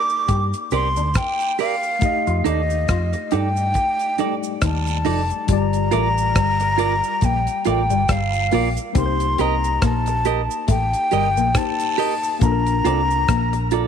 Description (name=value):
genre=lovers rock reggae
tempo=69 BPM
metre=4/4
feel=swing 58% on 16ths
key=unclear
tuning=A4 = 440 Hz
part: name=breathy jazz flute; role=melody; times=0.0-13.9 s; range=Eb5 to D6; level=-22 LUFS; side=equal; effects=tape echo
part: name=tine electric piano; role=accompaniment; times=0.0-13.9 s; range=G3 to Eb5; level=-28 LUFS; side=left 14 dB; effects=medium stereo tremolo, slapback echo
part: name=cabasa and guiro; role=percussion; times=0.1-13.9 s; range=none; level=-36 LUFS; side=right 17 dB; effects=none
part: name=electric guitar through a small old amp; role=riff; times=0.3-13.5 s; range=F3 to G4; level=-28 LUFS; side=left 14 dB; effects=slapback echo
part: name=vintage muted fingered electric bass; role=bass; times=0.3-13.9 s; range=F1 to G2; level=-22 LUFS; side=equal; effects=none
part: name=damped 70s drum kit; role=drums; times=0.3-13.9 s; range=hi-hat, kick drum, rim click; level=-23 LUFS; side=equal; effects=none
part: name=clean electric guitar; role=stabs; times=0.7-13.9 s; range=Eb4 to Eb5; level=-25 LUFS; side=right 14 dB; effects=none
room=light reverb, studio ambience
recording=1960s-style stereo with parts hard left and right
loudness=-17 LUFS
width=side -7 dB against mid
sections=0.0-5.5 A section; 5.5-13.9 B section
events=none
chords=0.0 Cm7; 2.0 F13; 5.5 Gm7; 9.0 Cm7; 12.4 Bbmaj7